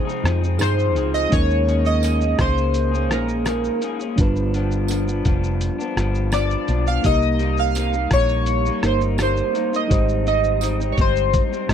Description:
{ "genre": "indie pop, bedroom pop", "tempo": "84 BPM", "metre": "4/4", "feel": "straight", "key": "unclear", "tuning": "A4 = 440 Hz", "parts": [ { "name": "electric guitar through a small old amp", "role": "accompaniment", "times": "0.0-11.7 s", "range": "G2 to Ab4", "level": "-25 LUFS", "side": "left 2 dB", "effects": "lush chorus, vibrato effect" }, { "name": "mellow reed electric piano", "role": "accompaniment", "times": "0.0-11.7 s", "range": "G3 to Eb5", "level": "-28 LUFS", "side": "right 3 dB", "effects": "none" }, { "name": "string machine, violas", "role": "sustained chords", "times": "0.0-1.3 s", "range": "C3 to Ab4", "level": "-32 LUFS", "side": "equal", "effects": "ensemble chorus" }, { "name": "lo-fi sampler-style drum kit", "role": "drums", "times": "0.1-11.7 s", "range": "hi-hat, kick drum, rim click, shaker", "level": "-22 LUFS", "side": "equal", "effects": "none" }, { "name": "vintage muted fingered electric bass", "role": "bass", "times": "0.2-11.7 s", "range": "F1 to G2", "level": "-22 LUFS", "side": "equal", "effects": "none" }, { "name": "chorused retro synth keys", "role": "melody", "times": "0.6-11.7 s", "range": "Bb4 to F5", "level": "-22 LUFS", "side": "equal", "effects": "wide subtle chorus, tape echo" }, { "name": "tambourine", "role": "percussion", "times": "0.6-10.8 s", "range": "none", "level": "-35 LUFS", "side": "right 29 dB", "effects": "none" } ], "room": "little or no reverb", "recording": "dry, close 1970s-style studio recording, faint mains hum", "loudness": "-17 LUFS", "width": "side -8 dB against mid", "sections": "0.0-1.3 A section; 1.3-11.7 B section", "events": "synth keys solo 0.0-1.3", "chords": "0.0 Fm7; 1.3 Eb7sus4; 4.2 G7; 7.0 Cm7; 9.9 Abmaj7", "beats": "0.61 | 1.33 2.04 2.76 3.47 | 4.19 4.90 5.62 6.33 | 7.04 7.76 8.47 9.19 | 9.90 10.62 11.33" }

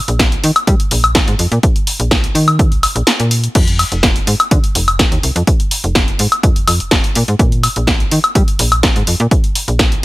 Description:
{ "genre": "filtered disco house", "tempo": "125 BPM", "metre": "4/4", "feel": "straight", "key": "unclear", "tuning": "A4 = 439 Hz", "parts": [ { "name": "slap-like FM bass", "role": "bass", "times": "0.1-10.0 s", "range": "F1 to G3", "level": "-16 LUFS", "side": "equal", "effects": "tube saturation, sidechain pumping" }, { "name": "punchy analog drum machine", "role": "drums", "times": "0.1-10.0 s", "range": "crash cymbal, hi-hat, snare drum, woodblock", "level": "-14 LUFS", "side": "left 1 dB", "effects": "sidechain pumping on hats, sidechain pumping on perc, sidechain pumping on cymbals" }, { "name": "electronic kick drum", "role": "drums", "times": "0.2-9.9 s", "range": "none", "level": "-14 LUFS", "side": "equal", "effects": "none" } ], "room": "little or no reverb", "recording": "none", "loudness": "-11 LUFS", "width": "side -19 dB against mid", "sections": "0.0-10.0 A section", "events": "kick drops out 3.1-3.6", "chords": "none", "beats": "0.20 0.68 1.16 | 1.64 2.12 2.60 3.08 | 3.56 4.04 4.51 5.00 | 5.47 5.96 6.43 6.92 | 7.39 7.88 8.36 8.84 | 9.31 9.79" }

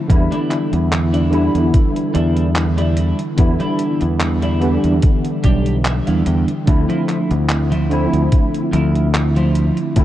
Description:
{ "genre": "vaporwave", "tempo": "73 BPM", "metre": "4/4", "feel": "swing 54% on 16ths", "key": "unclear", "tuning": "A4 = 440 Hz", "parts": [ { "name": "bell-like tine electric piano", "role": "accompaniment", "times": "0.0-10.0 s", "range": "D3 to E4", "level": "-19 LUFS", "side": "equal", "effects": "medium stereo tremolo, ensemble chorus, tape echo" }, { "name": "twelve-string electric guitar", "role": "riff", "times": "0.0-9.8 s", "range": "F3 to G5", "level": "-23 LUFS", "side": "right 1 dB", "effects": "lush chorus, tape echo" }, { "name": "modern bright fingered electric bass", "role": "bass", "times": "0.1-10.0 s", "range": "B1 to E2", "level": "-17 LUFS", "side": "equal", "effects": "none" }, { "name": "detuned 8-bit digital drum machine", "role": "drums", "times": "0.1-10.0 s", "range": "handclaps, hi-hat", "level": "-26 LUFS", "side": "equal", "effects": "none" }, { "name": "electronic kick drum", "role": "drums", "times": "0.1-10.0 s", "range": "none", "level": "-14 LUFS", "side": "equal", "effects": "none" } ], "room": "little or no reverb", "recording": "dark, warm production, cassette tape", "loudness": "-14 LUFS", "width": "side -13 dB against mid", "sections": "0.0-10.0 A section", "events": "clean electric guitar fill 5.4-6.7", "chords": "0.1 Em7; 6.7 Dm9", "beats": "| 0.10 0.92 1.74 2.56 | 3.39 4.21 5.03 5.85 | 6.67 7.50 8.32 9.14 | 9.96" }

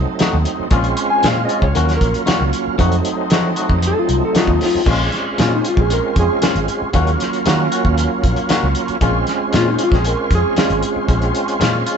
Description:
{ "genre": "straight-eighth soul blues", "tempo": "116 BPM", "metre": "4/4", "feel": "straight", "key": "Bb minor", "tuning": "A4 = 440 Hz", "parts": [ { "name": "overdriven tonewheel organ", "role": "accompaniment", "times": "0.0-12.0 s", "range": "Gb3 to F4", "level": "-20 LUFS", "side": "right 3 dB", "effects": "chorus vibrato, slow rotary speaker" }, { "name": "vintage muted fingered electric bass", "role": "bass", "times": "0.0-11.8 s", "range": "Ab1 to F3", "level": "-20 LUFS", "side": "equal", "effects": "none" }, { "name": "direct-recorded clean electric guitar", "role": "stabs", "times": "0.2-12.0 s", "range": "Bb2 to Gb4", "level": "-22 LUFS", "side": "left 6 dB", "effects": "none" }, { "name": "cloth-damped thuddy drum kit", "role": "drums", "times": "0.2-12.0 s", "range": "crash cymbal, hi-hat, kick drum, snare drum", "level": "-19 LUFS", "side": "equal", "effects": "none" }, { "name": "clean lap steel guitar", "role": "melody", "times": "1.1-11.3 s", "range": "Eb4 to Ab5", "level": "-20 LUFS", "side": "left 2 dB", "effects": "none" } ], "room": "light reverb", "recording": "band playing live in one room, nothing above 8.0 kHz", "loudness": "-14 LUFS", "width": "side -7 dB against mid", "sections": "0.0-4.9 A section; 4.9-12.0 A section", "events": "none", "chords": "0.0 F7b9; 0.7 Bbm7; 1.8 Ebm7; 2.8 F7b9; 4.9 Bbm7; 6.9 Ebm7; 9.0 Bbm7", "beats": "0.20 | 0.72 1.24 1.75 2.27 | 2.79 3.31 3.83 4.35 | 4.87 5.39 5.91 6.42 | 6.94 7.46 7.98 8.50 | 9.02 9.54 10.05 10.57 | 11.09 11.61" }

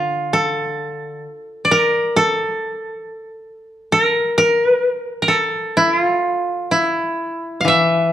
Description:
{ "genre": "japanese traditional, Japanese chamber music", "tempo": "62-69 BPM", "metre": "2/4", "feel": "rubato", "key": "D hirajoshi", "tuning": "A4 = 444 Hz", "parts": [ { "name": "koto", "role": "melody", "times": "0.0-8.1 s", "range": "D4 to F5", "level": "-16 LUFS", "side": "equal", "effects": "none" }, { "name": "koto", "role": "accompaniment", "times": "0.0-1.2, 7.6-8.1 s", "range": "D3 to E3", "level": "-21 LUFS", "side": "left 3 dB", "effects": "none" } ], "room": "moderate recital hall reverb, RT60 1.4 s", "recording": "dark, warm production", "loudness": "-15 LUFS", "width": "side -11 dB against mid", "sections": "0.3-8.1 A section", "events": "none", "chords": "none", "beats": "| 0.30 1.25 | 2.17 3.05 | 3.93 4.83 | 5.75 6.70 | 7.66" }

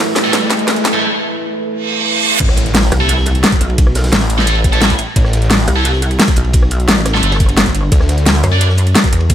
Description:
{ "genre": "dark technical drum and bass", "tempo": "174 BPM", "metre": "4/4", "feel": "straight", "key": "A dorian", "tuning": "A4 = 440 Hz", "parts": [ { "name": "deep dark ambient pad", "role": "sustained chords", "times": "0.0-2.4 s", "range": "A3 to B4", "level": "-21 LUFS", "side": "equal", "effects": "chorus, built-in reverb, sidechain pumping" }, { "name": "riser, reverse cymbal and impact", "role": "sound effects", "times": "0.0-3.8 s", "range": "none", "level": "-18 LUFS", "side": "right 3 dB", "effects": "none" }, { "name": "heavy high-gain guitar", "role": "stabs", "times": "0.2-8.6 s", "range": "A3 to D5", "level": "-20 LUFS", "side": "right 1 dB", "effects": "distortion, dub echo" }, { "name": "crunchy breakbeat drum kit", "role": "drums", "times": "0.2-9.3 s", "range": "hi-hat, ride cymbal, snare drum", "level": "-27 LUFS", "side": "left 1 dB", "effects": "high-pass filter on cymbals, small room ambience, high-pass filter on hats, high-pass filter on snare, high-pass filter on room" }, { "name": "dubstep drum kit", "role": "drums", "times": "0.2-9.3 s", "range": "crash cymbal, hi-hat, rim click, snare drum", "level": "-15 LUFS", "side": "equal", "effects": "high-pass filter on hats, small room ambience, high-pass filter on snare, high-pass filter on cymbals" }, { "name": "snarling distorted saw bass", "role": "bass", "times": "2.4-5.7, 7.9-8.4 s", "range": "A1 to D2", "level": "-14 LUFS", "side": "equal", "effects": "distortion, tube saturation" }, { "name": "electronic kick drum", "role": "drums", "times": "2.4-9.3 s", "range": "none", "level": "-13 LUFS", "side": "equal", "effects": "small room ambience" }, { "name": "pulsing pluck wobble bass", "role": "bass", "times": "2.9-9.3 s", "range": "G1 to F#2", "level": "-14 LUFS", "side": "equal", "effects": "chorus" } ], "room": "light reverb, studio reverb", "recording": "none", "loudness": "-10 LUFS", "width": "side -10 dB against mid", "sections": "0.0-2.4 A section; 2.4-9.3 B section", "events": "build-up 0.0-2.4; drum fill 0.0-1.0; riser 0.0-1.0; break 1.0-2.4; reverse cymbal 1.8-2.4; drop 2.4-9.3; impact 2.4-3.8", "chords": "0.0 A5; 2.4 Am; 7.9 D", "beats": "0.33 0.68 | 1.02 1.37 1.71 2.06 | 2.40 2.75 3.09 3.44 | 3.78 4.13 4.47 4.82 | 5.16 5.50 5.85 6.20 | 6.54 6.88 7.23 7.57 | 7.92 8.26 8.61 8.95 | 9.30" }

